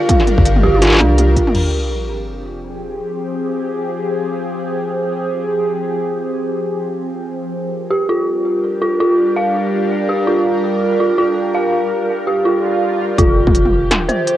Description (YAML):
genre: half-time drum and bass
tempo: 165 BPM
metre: 4/4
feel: swing 59% on 16ths, half-time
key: F dorian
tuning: A4 = 442 Hz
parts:
  - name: bowed-like drone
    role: sustained chords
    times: 0.0-14.4 s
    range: F3 to Bb4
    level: -20 LUFS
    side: equal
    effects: built-in reverb, phaser, sidechain pumping, cassette tape
  - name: dark detuned synth bell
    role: arpeggios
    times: 0.0-1.6, 7.9-14.4 s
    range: D4 to F5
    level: -16 LUFS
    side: right 1 dB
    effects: chorus, cassette tape, tape echo
  - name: electronic kick drum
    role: drums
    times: 0.1-1.4, 13.2-13.5 s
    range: none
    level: -15 LUFS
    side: equal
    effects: distortion, cassette tape
  - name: industrial drum kit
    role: drums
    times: 0.1-1.6, 13.2-14.4 s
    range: crash cymbal, hi-hat, snare drum, toms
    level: -18 LUFS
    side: equal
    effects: cassette tape
  - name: long sustained 808-style bass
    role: bass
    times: 0.4-1.4, 13.2-14.1 s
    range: Eb1 to C2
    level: -16 LUFS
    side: equal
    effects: none
  - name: sub drop and swell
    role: sound effects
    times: 1.5-3.0, 12.6-13.2 s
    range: none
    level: -23 LUFS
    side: right 1 dB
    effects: none
room: moderate booth ambience, RT60 0.2 s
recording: home recording on cassette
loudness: -14 LUFS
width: side -12 dB against mid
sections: 0.0-1.5 A section; 1.5-13.2 B section; 13.2-14.4 A section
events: drop 0.0-1.5, 13.2-14.4; impact 1.5-3.0; filter sweep on synth drone 1.5-13.2; swell 12.6-13.2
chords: 0.0 Gm; 1.5 Fm; 7.4 Gm; 13.2 Fm